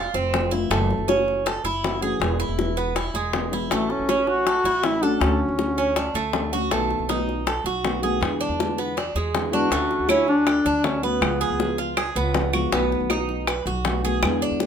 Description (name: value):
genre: latin, Cuban son and guajira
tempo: 160 BPM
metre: 4/4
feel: straight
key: unclear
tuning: A4 = 439 Hz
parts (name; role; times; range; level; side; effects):
- Cuban tres; arpeggios; 0.0-14.7 s; G#3 to B4; -25 LUFS; right 4 dB; none
- upright bass; bass; 0.0-14.7 s; E1 to E2; -29 LUFS; equal; none
- bongos; percussion; 0.1-14.7 s; none; -27 LUFS; left 5 dB; none
- nylon-string guitar; accompaniment; 0.3-14.7 s; B2 to F#4; -27 LUFS; left 2 dB; none
- warm duduk; melody; 3.7-6.3, 9.5-11.7 s; A3 to F#4; -23 LUFS; left 1 dB; none
- claves; percussion; 10.1-14.4 s; none; -28 LUFS; right 4 dB; none
room: moderate studio reverb, RT60 0.6 s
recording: minimal, uncompressed stereo recording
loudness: -20 LUFS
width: side -8 dB against mid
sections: 0.0-14.7 A section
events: none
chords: 0.0 Fmaj7; 0.7 F#m7; 2.2 E; 3.7 A6; 5.2 Dmaj7; 6.7 B7; 8.2 E7; 9.7 Dmaj7; 11.2 C#7; 12.7 B7